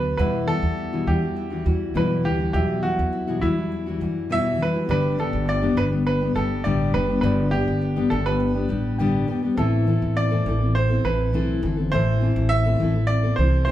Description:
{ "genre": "pop", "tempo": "102 BPM", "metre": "4/4", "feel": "straight", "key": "unclear", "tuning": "A4 = 440 Hz", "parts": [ { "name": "bright upright piano", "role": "melody", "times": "0.0-13.7 s", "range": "E4 to E5", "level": "-26 LUFS", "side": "right 3 dB", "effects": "none" }, { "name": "fingerpicked steel-string acoustic guitar", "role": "accompaniment", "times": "0.0-13.7 s", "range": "E2 to A4", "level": "-24 LUFS", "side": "left 3 dB", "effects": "none" }, { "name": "nylon-string guitar", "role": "arpeggios", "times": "0.0-13.7 s", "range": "E3 to F#4", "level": "-35 LUFS", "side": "right 4 dB", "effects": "none" }, { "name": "upright bass", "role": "bass", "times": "0.0-13.7 s", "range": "F#1 to F#2", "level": "-24 LUFS", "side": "equal", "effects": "none" }, { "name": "reed electric piano", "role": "accompaniment", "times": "0.2-13.7 s", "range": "F#3 to G5", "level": "-33 LUFS", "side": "left 2 dB", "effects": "none" } ], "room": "wet large studio reverb, RT60 0.9 s", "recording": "band playing live in one room", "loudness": "-20 LUFS", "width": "side -12 dB against mid", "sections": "0.2-13.7 A section", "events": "reed electric piano fill 8.7-9.6", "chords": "0.2 Emadd9; 4.9 G; 9.6 Am" }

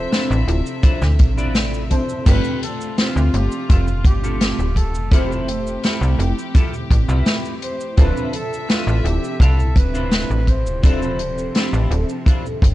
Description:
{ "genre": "vaporwave", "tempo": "84 BPM", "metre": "4/4", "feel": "straight", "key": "D dorian", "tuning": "A4 = 440 Hz", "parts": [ { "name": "mellow flugelhorn", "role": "melody", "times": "0.0-11.9 s", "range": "F4 to C5", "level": "-29 LUFS", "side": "equal", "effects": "tape echo" }, { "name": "FM electric piano with soft pad layer", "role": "accompaniment", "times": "0.0-12.7 s", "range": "F3 to E5", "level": "-27 LUFS", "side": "equal", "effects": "phaser, ensemble chorus, tape echo" }, { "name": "warm studio string section", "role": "sustained chords", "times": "0.0-12.7 s", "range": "C3 to E5", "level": "-32 LUFS", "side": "equal", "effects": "none" }, { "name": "slap-like FM bass", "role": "bass", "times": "0.0-12.7 s", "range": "D1 to D2", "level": "-19 LUFS", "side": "equal", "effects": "none" }, { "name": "clean electric guitar", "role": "riff", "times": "0.1-12.7 s", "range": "C4 to D5", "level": "-29 LUFS", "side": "left 2 dB", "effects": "lush chorus, tape echo" }, { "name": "swinging big-band drum kit", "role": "drums", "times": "0.1-12.7 s", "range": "cabasa, crash cymbal, hi-hat, snare drum", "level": "-23 LUFS", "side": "equal", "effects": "vintage 12-bit sampler grit" }, { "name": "kick drum", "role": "drums", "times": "0.8-12.7 s", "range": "none", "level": "-16 LUFS", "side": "equal", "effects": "vintage 12-bit sampler grit" } ], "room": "small room ambience", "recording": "rough home demo mix, cassette tape, nothing above 10.6 kHz", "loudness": "-16 LUFS", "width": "side -16 dB against mid", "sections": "0.0-12.7 A section", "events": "none", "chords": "0.0 Dm9; 2.3 G9sus4; 5.1 Fmaj9; 8.0 Dm9" }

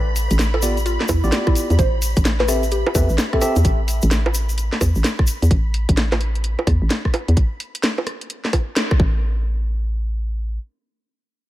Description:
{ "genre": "UK garage, two-step garage", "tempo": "129 BPM", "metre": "4/4", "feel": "swing 64% on 16ths", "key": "A minor", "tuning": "A4 = 438 Hz", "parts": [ { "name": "mallet-like synth pluck", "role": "melody", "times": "0.0-3.5 s", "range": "E4 to C5", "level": "-26 LUFS", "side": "equal", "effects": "chorus, phaser, ping-pong delay" }, { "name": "soft string machine", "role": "sustained chords", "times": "0.0-7.4 s", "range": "B5", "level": "-34 LUFS", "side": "equal", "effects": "ensemble chorus, sidechain pumping" }, { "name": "hollow knocking FM bass", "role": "bass", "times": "0.0-10.6 s", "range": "A1 to E2", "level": "-19 LUFS", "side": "equal", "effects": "none" }, { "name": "garage drum kit", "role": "drums", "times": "0.2-9.0 s", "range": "bongos, hi-hat, rim click, snare drum", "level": "-23 LUFS", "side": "right 1 dB", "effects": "none" }, { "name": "tube shaker", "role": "percussion", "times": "0.2-5.5 s", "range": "none", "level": "-30 LUFS", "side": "left 2 dB", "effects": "none" }, { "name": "tine electric piano", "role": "stabs", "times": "0.6-3.6 s", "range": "B3 to E5", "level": "-25 LUFS", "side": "equal", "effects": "diffuse ambient delay" }, { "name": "electronic kick drum", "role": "drums", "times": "1.1-9.1 s", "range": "none", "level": "-19 LUFS", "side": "equal", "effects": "none" } ], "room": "digital ambience", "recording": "none", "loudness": "-17 LUFS", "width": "side -15 dB against mid", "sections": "0.0-9.2 A section; 9.2-11.5 B section", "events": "drop 0.0-9.2; band accent 8.8", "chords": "0.0 G7/A; 1.8 Am7; 5.5 Asus2; 7.4 N.C." }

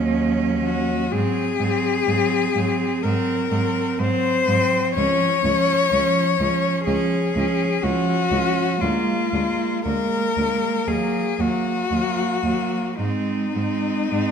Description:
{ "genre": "classical, lyrical piece for cello ensemble", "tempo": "53-64 BPM", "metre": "4/4", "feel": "rubato", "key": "Db major", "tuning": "A4 = 435 Hz", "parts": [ { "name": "rich cello", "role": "second line", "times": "0.0-14.3 s", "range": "Bb3 to Db4", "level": "-25 LUFS", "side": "right 6 dB", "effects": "none" }, { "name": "warm cello", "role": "accompaniment", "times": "0.0-14.3 s", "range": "F3 to Ab3", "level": "-27 LUFS", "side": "equal", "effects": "none" }, { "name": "warm cello", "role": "bass", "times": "0.0-14.2 s", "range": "Db2 to Ab2", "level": "-26 LUFS", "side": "right 2 dB", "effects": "none" }, { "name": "clear cello", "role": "melody", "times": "0.6-14.3 s", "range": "Eb4 to Db5", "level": "-22 LUFS", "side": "left 7 dB", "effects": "none" } ], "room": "moderate recital hall reverb, RT60 1.6 s", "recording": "none", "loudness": "-19 LUFS", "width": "side -7 dB against mid", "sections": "0.0-14.3 A section", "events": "none", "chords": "0.0 Ebm7; 1.1 Ab9; 5.0 Db; 8.8 Bb7/D; 10.9 Ebm; 13.0 Ab" }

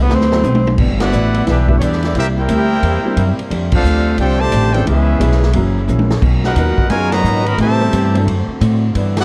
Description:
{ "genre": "jazz, big band swing", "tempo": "176 BPM", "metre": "4/4", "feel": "swing 64% on 8ths", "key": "G major", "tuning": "A4 = 440 Hz", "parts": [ { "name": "warm tenor saxophone", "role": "melody", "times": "0.0-0.7 s", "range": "B3 to C4", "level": "-23 LUFS", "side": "equal", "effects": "analog delay" }, { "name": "clear trombone section", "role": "sustained chords", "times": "0.0-9.2 s", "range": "C3 to B4", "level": "-29 LUFS", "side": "equal", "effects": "none" }, { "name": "upright bass", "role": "bass", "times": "0.0-9.2 s", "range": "F#1 to A2", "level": "-18 LUFS", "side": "equal", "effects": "none" }, { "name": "vintage hollow-body jazz guitar", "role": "accompaniment", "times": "0.1-9.2 s", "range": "F#2 to B4", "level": "-27 LUFS", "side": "equal", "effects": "none" }, { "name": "swinging big-band drum kit", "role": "drums", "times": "0.1-9.2 s", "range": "crash cymbal, hi-hat, kick drum, ride cymbal, snare drum, toms", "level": "-23 LUFS", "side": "equal", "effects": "none" }, { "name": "warm upright piano", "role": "accompaniment", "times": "0.3-8.3 s", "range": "E3 to A#4", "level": "-27 LUFS", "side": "equal", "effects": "none" }, { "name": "brilliant trumpet section", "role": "melody", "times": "1.0-9.2 s", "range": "B3 to B5", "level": "-23 LUFS", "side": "equal", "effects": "analog delay" }, { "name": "warm trombone section", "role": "second line", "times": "1.0-9.2 s", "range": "A#2 to G4", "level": "-24 LUFS", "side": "equal", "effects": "none" } ], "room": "light reverb, studio reverb", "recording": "echo-heavy mix, cassette tape", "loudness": "-15 LUFS", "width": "mono", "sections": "0.8-9.2 A section", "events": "drum fill 0.1-0.8, 5.9-6.2; band accent 0.9, 3.7, 7.1", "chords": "0.1 D13; 0.8 G6; 2.1 C7; 3.5 F69; 4.9 C#m7; 5.5 F#7; 6.2 Bmaj7; 7.6 Am7; 8.3 D7" }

